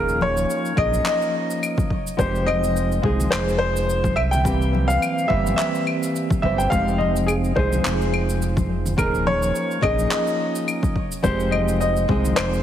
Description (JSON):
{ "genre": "sunset chillout", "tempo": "106 BPM", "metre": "4/4", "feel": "swing 55% on 16ths", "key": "F minor", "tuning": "A4 = 438 Hz", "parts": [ { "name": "clear concert grand piano", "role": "melody", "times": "0.0-12.6 s", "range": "Ab4 to G5", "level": "-23 LUFS", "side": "left 1 dB", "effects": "ping-pong delay" }, { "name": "nylon-string guitar", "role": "accompaniment", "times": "0.0-12.6 s", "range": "E3 to C5", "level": "-25 LUFS", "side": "equal", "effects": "auto-pan, low-pass filter" }, { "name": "round analog bass", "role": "bass", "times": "0.0-12.6 s", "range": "Eb1 to C2", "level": "-24 LUFS", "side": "equal", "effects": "none" }, { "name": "electronic cabasa, claves and handclaps", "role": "drums", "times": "0.1-12.6 s", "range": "none", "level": "-29 LUFS", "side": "left 1 dB", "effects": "none" }, { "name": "congas", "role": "percussion", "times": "0.2-12.4 s", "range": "none", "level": "-31 LUFS", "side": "left 4 dB", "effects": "none" }, { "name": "electronic kick drum", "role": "drums", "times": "0.8-12.2 s", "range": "none", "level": "-25 LUFS", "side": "right 1 dB", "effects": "overdrive" } ], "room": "moderate lush hall reverb, RT60 2.2 s", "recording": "heavily compressed radio sound", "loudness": "-19 LUFS", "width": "side -10 dB against mid", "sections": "0.0-12.6 A section", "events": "none", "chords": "0.0 Eb7sus4; 1.9 Fm7; 4.2 C7; 6.7 Fm7; 9.0 Eb7sus4; 11.0 Fm7" }